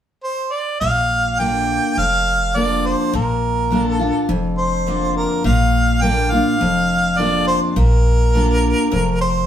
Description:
honky-tonk and classic country; 104 BPM; 4/4; straight; Bb major; A4 = 441 Hz
warm harmonica; melody; 0.2-9.5 s; Bb4 to G5; -19 LUFS; right 1 dB
picked steel-string acoustic guitar; accompaniment; 0.8-9.5 s; F2 to F4; -20 LUFS; left 1 dB
upright bass; bass; 0.8-9.5 s; F1 to Bb1; -20 LUFS; equal
moderate stone room reverb, RT60 0.9 s; band playing live in one room; -15 LUFS; side -10 dB against mid
0.8-5.5 A section; 5.5-9.5 B section
0.0 N.C.; 0.8 Bb
0.24 | 0.82 1.40 1.98 2.56 | 3.14 3.71 4.29 4.87 | 5.45 6.03 6.61 7.19 | 7.77 8.35 8.92

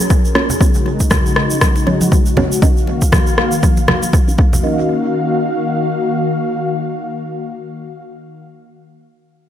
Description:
afro house; 119 BPM; 4/4; swing 58% on 16ths; Eb minor; A4 = 442 Hz
warm analog pad; sustained chords; 0.0-8.4 s; Db3 to F5; -19 LUFS; left 2 dB; chorus, sidechain pumping
deep mellow chord stab; stabs; 0.0-8.4 s; Bb3 to F5; -22 LUFS; right 3 dB; chorus, sidechain pumping, analog delay
congas; percussion; 0.0-4.6 s; -21 LUFS; right 1 dB; analog delay
electronic kick drum; drums; 0.1-4.5 s; -14 LUFS; equal; overdrive
tube shaker; percussion; 0.1-4.6 s; -26 LUFS; right 3 dB; analog delay
electronic rim click; drums; 0.4-4.0 s; -19 LUFS; left 1 dB; analog delay
moderate echo chamber reverb, RT60 1.4 s, digital ambience; echo-heavy mix; -12 LUFS; side -10 dB against mid
0.0-4.6 A section; 4.6-8.7 B section
0.0 Gbmaj7; 0.6 Db7sus4; 2.6 Ebm7
0.10 | 0.61 1.11 1.61 2.12 | 2.62 3.13 3.63 4.14 | 4.64 5.14 5.65 6.15 | 6.66 7.16 7.67 8.17

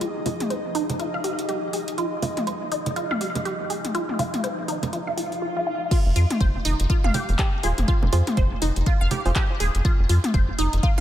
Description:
minimal techno; 122 BPM; 4/4; swing 59% on 16ths; F minor; A4 = 439 Hz
resonant blip pluck; riff; 0.0-11.0 s; Eb4 to F5; -27 LUFS; equal; phaser, sidechain pumping, ping-pong delay
booming analog drum machine; drums; 0.0-10.9 s; crash cymbal, handclaps, hi-hat; -33 LUFS; equal
ethereal airy pad; texture; 0.0-5.5 s; F3 to Eb5; -32 LUFS; equal; ensemble chorus, built-in reverb, sidechain pumping
electronic congas and toms; percussion; 0.3-11.0 s; -30 LUFS; equal; overdrive, analog delay
swell; sound effects; 5.2-5.9 s; -36 LUFS; left 1 dB
electronic kick drum; drums; 5.9-10.9 s; -21 LUFS; equal
rubbery square bass; bass; 6.1-11.0 s; Eb1 to F2; -21 LUFS; equal; sidechain pumping
wavetable chord stab; stabs; 7.6-9.3 s; F4 to C5; -33 LUFS; right 3 dB; analog delay
light reverb; -21 LUFS; side -12 dB against mid
0.0-5.9 A section; 5.9-11.0 B section
swell 5.2-5.9; drop 5.9-11.0
0.0 Fm; 5.9 F5
| 0.01 0.50 1.00 1.49 | 1.98 2.47 2.96 3.46 | 3.95 4.44 4.93 5.42 | 5.91 6.41 6.90 7.39 | 7.88 8.37 8.86 9.36 | 9.85 10.34 10.83

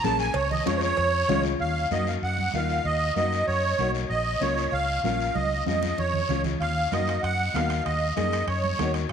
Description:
latin, cumbia; 192 BPM; 4/4; straight; Eb minor; A4 = 439 Hz
musette accordion; melody; 0.0-8.9 s; C5 to A5; -26 LUFS; right 3 dB
dark upright piano; accompaniment; 0.0-9.0 s; Ab3 to Ab4; -32 LUFS; left 8 dB
fingered electric bass; bass; 0.0-9.1 s; Bb1 to Gb2; -29 LUFS; left 1 dB
congas; percussion; 0.0-9.0 s; -35 LUFS; right 8 dB
guiro; percussion; 0.0-9.1 s; -38 LUFS; left 12 dB
cowbell and timbales; percussion; 0.3-1.1, 6.6-9.1 s; -38 LUFS; right 9 dB
wet echo chamber reverb, RT60 2.0 s, studio reverb; 1960s-style stereo with parts hard left and right; -23 LUFS; side -7 dB against mid
0.0-1.6 A section; 1.6-9.1 B section
accordion solo 0.0-1.6; drum fill 5.4-6.6
0.3 Db; 1.6 Ebm; 4.1 Bbm; 5.4 Db; 6.6 Ebm
0.04 | 0.35 0.66 0.97 1.28 | 1.60 1.91 2.22 2.54 | 2.85 3.16 3.48 3.79 | 4.10 4.42 4.73 5.04 | 5.36 5.67 5.98 6.29 | 6.61 6.92 7.23 7.55 | 7.86 8.17 8.48 8.80 | 9.11

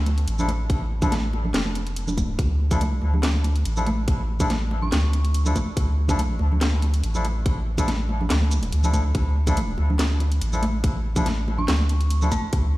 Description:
deep dubstep; 142 BPM; 4/4; swing 53% on 16ths, half-time; D harmonic minor; A4 = 438 Hz
soft dub sub bass; bass; 0.0-12.8 s; F1 to D2; -22 LUFS; equal
garage drum kit; drums; 0.1-12.6 s; handclaps, hi-hat, shaker, snare drum; -29 LUFS; equal
congas; percussion; 0.1-12.4 s; -30 LUFS; right 1 dB; dub echo
melodica; stabs; 0.4-12.3 s; F3 to A4; -32 LUFS; left 2 dB; dub echo
electronic kick drum; drums; 0.7-12.6 s; -23 LUFS; equal
dark detuned synth bell; melody; 4.8-5.4, 11.6-12.8 s; A5 to C#6; -37 LUFS; right 1 dB; chorus, phaser, dub echo
little or no reverb; played on a big sound system in a bare room, stone room reverb; -20 LUFS; side -18 dB against mid
0.0-12.8 A section
0.0 Dmadd9
0.28 | 0.70 1.12 1.54 1.97 | 2.39 2.81 3.23 3.65 | 4.08 4.50 4.92 5.34 | 5.77 6.19 6.61 7.04 | 7.46 7.88 8.30 8.72 | 9.15 9.57 9.99 10.42 | 10.84 11.26 11.68 12.11 | 12.53

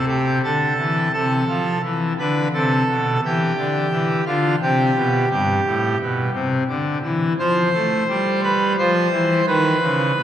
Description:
classical, chorale-style piece for pipe organ; 86 BPM; 3/4; rubato; A minor; A4 = 440 Hz
pipe organ, full organ; solo; 0.0-10.2 s; G2 to C5; -17 LUFS; equal
wet cathedral reverb, RT60 4.6 s; vinyl crackle; -17 LUFS; side -10 dB against mid
0.0-10.2 A section
0.0 Am; 1.1 Am/C; 3.2 Em; 5.3 Em/G; 7.4 F; 9.5 B
0.43 | 1.14 1.83 2.52 | 3.22 3.91 4.60 | 5.30 6.00 6.68 | 7.38 8.08 8.78 | 9.47 10.18

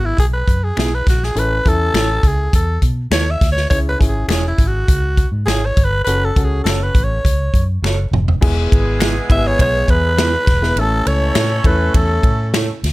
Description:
uptempo 1960s-style soul; 102 BPM; 4/4; straight; E major; A4 = 441 Hz
raspy alto saxophone; melody; 0.0-12.5 s; E4 to E5; -20 LUFS; equal
warm upright piano; accompaniment; 0.0-12.5 s; G#3 to B4; -24 LUFS; left 2 dB
vintage muted fingered electric bass; bass; 0.0-12.9 s; E1 to B2; -18 LUFS; equal
natural country drum kit; drums; 0.2-12.9 s; crash cymbal, hi-hat, kick drum, ride cymbal, snare drum, toms; -16 LUFS; equal
electric guitar through a small old amp; stabs; 0.8-12.7 s; B3 to C#5; -24 LUFS; right 5 dB
finger snaps; percussion; 0.8-12.7 s; -27 LUFS; left 5 dB
warm horn section; second line; 8.4-12.8 s; G#3 to A4; -26 LUFS; right 1 dB
small room ambience; -13 LUFS; side -19 dB against mid
0.0-8.4 A section; 8.4-12.9 B section
alto saxophone solo 0.0-8.4; drum fill 7.8-8.4
0.0 E; 1.4 A; 3.7 C#m; 6.1 F#m; 8.4 E; 10.8 A
0.18 0.77 | 1.36 1.95 2.54 3.13 | 3.72 4.30 4.89 5.48 | 6.07 6.66 7.25 7.84 | 8.43 9.01 9.60 10.19 | 10.78 11.36 11.95 12.54

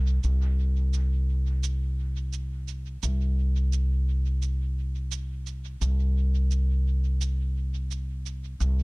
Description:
ambient dub; 86 BPM; 4/4; swing 54% on 16ths; A4 = 441 Hz
upright bass; bass; 0.0-8.8 s; C2; -24 LUFS; equal
cabasa; drums; 0.2-8.8 s; -40 LUFS; right 11 dB; dub echo
little or no reverb; echo-heavy mix; -25 LUFS; side -29 dB against mid
0.2-8.8 A section
| 0.23 0.93 1.63 2.33 | 3.03 3.72 4.42 5.12 | 5.82 6.51 7.21 7.91 | 8.61

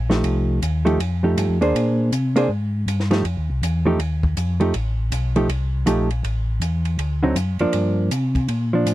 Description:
soul jazz organ trio; 160 BPM; 4/4; swing 63% on 8ths; F mixolydian; A4 = 440 Hz
mellow tonewheel organ; bass; 0.0-8.9 s; A1 to C3; -21 LUFS; equal; chorus vibrato, slow rotary speaker
hollow-body jazz guitar; accompaniment; 0.1-8.9 s; D3 to C5; -19 LUFS; right 1 dB
compact cocktail drum kit; drums; 0.1-8.9 s; hi-hat, kick drum, ride cymbal, snare drum; -30 LUFS; equal
little or no reverb; dry, close 1970s-style studio recording; -18 LUFS; side -15 dB against mid
0.0-8.9 A section
0.0 F9; 1.7 Bb9; 3.2 F9; 6.2 A5; 7.0 D7b9; 7.7 Gm7
| 0.25 0.62 1.00 1.37 | 1.75 2.12 2.50 2.87 | 3.25 3.62 4.00 4.37 | 4.74 5.12 5.49 5.87 | 6.24 6.62 6.99 7.36 | 7.74 8.12 8.49 8.87

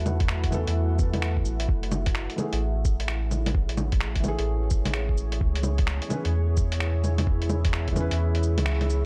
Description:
future garage; 129 BPM; 4/4; swing 63% on 16ths; F# minor; A4 = 440 Hz
deep dark ambient pad; sustained chords; 0.0-9.1 s; A3 to F#5; -36 LUFS; equal; chorus, built-in reverb, sidechain pumping
soft dub sub bass; bass; 0.0-9.1 s; F#1 to E2; -28 LUFS; equal; sidechain pumping
lo-fi sampler-style drum kit; drums; 0.1-9.0 s; bongos, cabasa, finger snaps, hi-hat; -33 LUFS; equal
electronic kick drum; drums; 0.2-8.0 s; -28 LUFS; equal
felt-muted upright piano; accompaniment; 0.5-9.1 s; E3 to B4; -37 LUFS; equal; sidechain pumping, tape echo
little or no reverb; -26 LUFS; mono
0.0-9.1 A section
kick drops out 8.2-9.1; band accent 8.7
0.0 B7sus4; 1.7 F#m9; 5.4 C#m7
0.29 0.76 1.22 | 1.69 2.15 2.62 3.08 | 3.55 4.01 4.48 4.94 | 5.41 5.87 6.34 6.80 | 7.27 7.73 8.20 8.66

